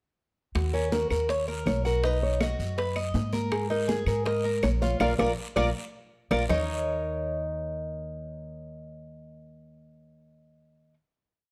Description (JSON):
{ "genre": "latin, Cuban son and guajira", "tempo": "161 BPM", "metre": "4/4", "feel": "straight", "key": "Eb minor", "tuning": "A4 = 441 Hz", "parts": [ { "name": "guiro", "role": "percussion", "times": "0.5-6.6 s", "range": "none", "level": "-47 LUFS", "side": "equal", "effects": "none" }, { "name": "nylon-string guitar", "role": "melody", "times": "0.6-10.9 s", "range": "Gb4 to F5", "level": "-32 LUFS", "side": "equal", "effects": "none" }, { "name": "upright bass", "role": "bass", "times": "0.6-10.9 s", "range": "Bb1 to Ab2", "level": "-33 LUFS", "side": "equal", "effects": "none" }, { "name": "bongos", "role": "percussion", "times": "0.6-6.6 s", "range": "none", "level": "-40 LUFS", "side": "equal", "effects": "none" }, { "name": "claves", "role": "percussion", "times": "0.6-6.6 s", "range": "none", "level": "-42 LUFS", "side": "equal", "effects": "none" }, { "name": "congas", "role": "percussion", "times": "0.6-6.6 s", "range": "none", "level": "-36 LUFS", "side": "equal", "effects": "none" }, { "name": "Cuban tres", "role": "arpeggios", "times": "0.7-10.9 s", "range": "Db4 to D#5", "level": "-34 LUFS", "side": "equal", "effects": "none" } ], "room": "light reverb", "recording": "none", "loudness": "-28 LUFS", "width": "mono", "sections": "0.6-6.5 verse; 6.5-9.5 final chord", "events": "band accent 5.0-6.5", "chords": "0.6 Ebm7; 2.0 B; 3.5 Absus2; 5.0 Bb; 6.5 Eb5" }